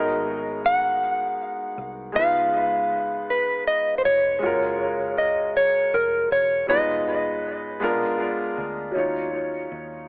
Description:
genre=slow six-eight R&B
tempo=53 BPM (dotted quarters)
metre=6/8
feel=straight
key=Eb minor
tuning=A4 = 440 Hz
part: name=mellow electric guitar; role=melody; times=0.0-7.5 s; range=Bb4 to Gb5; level=-21 LUFS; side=equal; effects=tape echo
part: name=warm grand piano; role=accompaniment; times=0.0-10.1 s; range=Gb3 to Db5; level=-26 LUFS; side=equal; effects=tape echo
part: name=vintage muted fingered electric bass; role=bass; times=0.0-10.1 s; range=Fb1 to Eb2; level=-42 LUFS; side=equal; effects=none
room=moderate plate reverb, RT60 3.1 s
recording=echo-heavy mix, telephone sound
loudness=-20 LUFS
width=side -30 dB against mid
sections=0.0-8.9 A section; 8.9-10.1 B section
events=none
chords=0.0 Abm9; 2.2 Db9; 4.4 Gbmaj7; 6.7 Fm7b5; 7.8 Bb7b9; 8.9 Ebm9

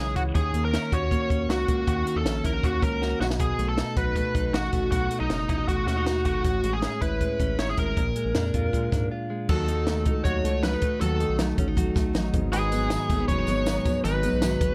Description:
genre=jangly indie pop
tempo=158 BPM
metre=4/4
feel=straight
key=unclear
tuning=A4 = 437 Hz
part: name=biting lead guitar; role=melody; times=0.0-14.7 s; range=D#4 to C#5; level=-31 LUFS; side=equal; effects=overdrive
part: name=direct-recorded clean electric guitar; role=arpeggios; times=0.0-14.7 s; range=G#2 to F#4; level=-32 LUFS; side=equal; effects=subtle chorus
part: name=round analog bass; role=bass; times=0.0-14.7 s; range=F#1 to A#2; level=-31 LUFS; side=equal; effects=none
part: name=compact cocktail drum kit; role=drums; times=0.2-14.7 s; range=crash cymbal, hi-hat, kick drum, snare drum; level=-30 LUFS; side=equal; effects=none
part: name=picked steel-string acoustic guitar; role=accompaniment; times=9.5-14.7 s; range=G#2 to A4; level=-33 LUFS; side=equal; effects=none
part: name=bright upright piano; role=accompaniment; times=12.5-14.7 s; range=F#4 to B4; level=-42 LUFS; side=equal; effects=none
part: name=tambourine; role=percussion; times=12.5-14.5 s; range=none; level=-47 LUFS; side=equal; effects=none
room=moderate studio reverb, RT60 0.6 s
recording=dark, warm production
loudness=-25 LUFS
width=mono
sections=0.0-9.5 A section; 9.5-14.7 B section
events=drum fill 3.0-3.4; break 9.1-9.5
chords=0.4 D#m7; 3.2 B7; 6.4 Amaj7; 8.0 A#7; 9.5 D#dim; 12.3 G#m7

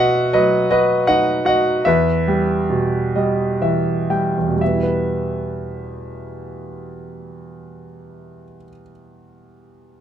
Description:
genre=classical, lyrical solo piano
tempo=58-81 BPM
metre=3/4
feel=rubato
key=E harmonic minor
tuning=A4 = 440 Hz
part: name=bright concert grand piano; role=solo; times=0.0-10.0 s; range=E2 to G5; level=-17 LUFS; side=right 1 dB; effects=none
room=little or no reverb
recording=close, detailed microphones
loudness=-16 LUFS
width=side -9 dB against mid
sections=0.0-4.6 A section; 4.6-7.6 B section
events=slowing down 0.0-4.6; grand piano fill 2.7-4.6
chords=0.0 B; 1.9 Em

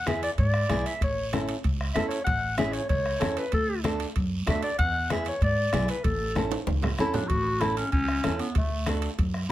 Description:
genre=latin, cumbia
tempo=191 BPM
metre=4/4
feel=straight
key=A major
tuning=A4 = 440 Hz
part: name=growling clarinet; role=melody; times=0.0-9.5 s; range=A3 to F#5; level=-28 LUFS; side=equal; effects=none
part: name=upright bass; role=bass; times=0.0-9.4 s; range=A1 to G#2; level=-30 LUFS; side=equal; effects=none
part: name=flamenco guitar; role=accompaniment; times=0.1-9.5 s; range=B3 to A4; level=-30 LUFS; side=equal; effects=none
part: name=bombo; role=percussion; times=0.1-9.5 s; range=none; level=-30 LUFS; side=left 1 dB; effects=none
part: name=congas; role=percussion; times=0.1-9.5 s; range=none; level=-34 LUFS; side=left 2 dB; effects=none
part: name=guiro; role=percussion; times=0.1-9.5 s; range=none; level=-42 LUFS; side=right 5 dB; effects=none
part: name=timbales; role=percussion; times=0.1-9.3 s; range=none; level=-38 LUFS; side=right 8 dB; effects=none
room=light reverb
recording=none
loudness=-24 LUFS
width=side -14 dB against mid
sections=0.0-7.3 A section; 7.3-9.5 A section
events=drum fill 6.4-7.3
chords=0.0 E7; 1.0 A; 3.5 D; 4.8 E7; 6.0 A; 8.6 D

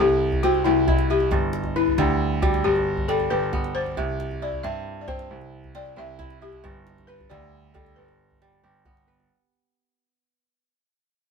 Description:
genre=west african traditional, West African string and xylophone music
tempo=90 BPM (dotted quarters)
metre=12/8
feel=straight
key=unclear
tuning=A4 = 440 Hz
part: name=balafon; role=melody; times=0.0-8.8 s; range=D4 to E5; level=-24 LUFS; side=left 4 dB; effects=none
part: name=kora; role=arpeggios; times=0.0-10.7 s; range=G2 to D5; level=-29 LUFS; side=right 4 dB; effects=none
part: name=clear concert grand piano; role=bass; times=0.0-9.3 s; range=G1 to G2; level=-28 LUFS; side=right 2 dB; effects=none
part: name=djembe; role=percussion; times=0.1-9.3 s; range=none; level=-29 LUFS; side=equal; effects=none
room=light reverb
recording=band playing live in one room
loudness=-20 LUFS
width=side -5 dB against mid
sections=0.0-9.3 A section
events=fade-out 0.0-9.3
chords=0.0 C; 1.3 G; 4.0 C; 6.6 G

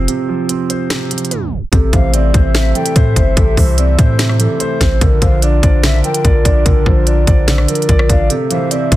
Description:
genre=hip hop, trap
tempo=146 BPM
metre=4/4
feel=half-time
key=A phrygian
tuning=A4 = 440 Hz
part: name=dark grand piano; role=accompaniment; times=0.0-9.0 s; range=C3 to D5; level=-18 LUFS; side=right 3 dB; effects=low-pass filter
part: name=long sustained 808-style bass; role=bass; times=0.0-9.0 s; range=G1 to A2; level=-13 LUFS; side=equal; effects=none
part: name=trap drum kit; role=drums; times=0.1-9.0 s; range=hi-hat, kick drum, rim click, snare drum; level=-14 LUFS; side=equal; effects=none
part: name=vibraphone with soft mallets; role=melody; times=1.7-9.0 s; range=A4 to D5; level=-20 LUFS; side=left 1 dB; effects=low-pass filter, tape echo
part: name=hollow soft pad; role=sustained chords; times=1.7-9.0 s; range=A3 to E5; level=-26 LUFS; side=equal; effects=chorus, phaser
part: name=mellow hollow silver concert flute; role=second line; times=1.9-8.7 s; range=E5 to G5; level=-27 LUFS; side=left 5 dB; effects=tape echo
room=studio reverb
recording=dense, heavily limited modern master, tape stop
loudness=-10 LUFS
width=side -15 dB against mid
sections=0.0-1.7 A section; 1.7-9.0 B section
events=break 0.1-1.7, 8.3-8.7; tape stop 1.3-1.7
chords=0.0 F5; 1.7 Am; 5.0 Bb; 8.3 Am

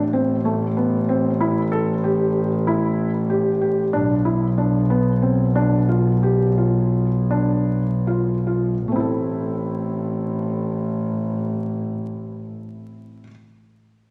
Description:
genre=contemporary instrumental, chamber music in an uneven meter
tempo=145-190 BPM (eighths)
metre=7/8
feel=straight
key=A minor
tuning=A4 = 440 Hz
part: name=felt-muted upright piano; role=arpeggios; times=0.0-13.3 s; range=A3 to A4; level=-25 LUFS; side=equal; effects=none
part: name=warm double bass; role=bass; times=0.0-12.5 s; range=A1 to B1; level=-23 LUFS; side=equal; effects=none
room=wet recital hall reverb, RT60 1.4 s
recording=vinyl crackle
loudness=-21 LUFS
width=mono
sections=0.0-8.9 A section; 8.9-11.8 B section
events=slowing down 3.9-8.9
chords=0.0 A7(no3); 3.9 Bdim; 8.9 Am

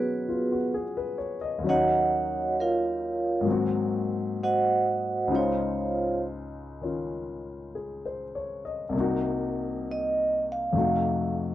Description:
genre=jazz ballad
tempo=66 BPM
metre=4/4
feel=swing 68% on 8ths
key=unclear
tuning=A4 = 439 Hz
part: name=vibraphone with soft mallets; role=melody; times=0.0-11.3 s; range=B3 to Gb5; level=-25 LUFS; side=right 2 dB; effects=none
part: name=warm grand piano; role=accompaniment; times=0.0-11.5 s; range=C2 to D#5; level=-29 LUFS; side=left 3 dB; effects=none
room=studio reverb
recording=dry, close 1970s-style studio recording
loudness=-25 LUFS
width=side -13 dB against mid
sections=0.0-11.5 A section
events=vibraphone solo 0.0-11.5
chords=0.0 B69; 1.6 Ebm9; 3.5 Ab9; 5.3 Dbmaj7; 8.9 Cm7b5; 10.7 F7b9

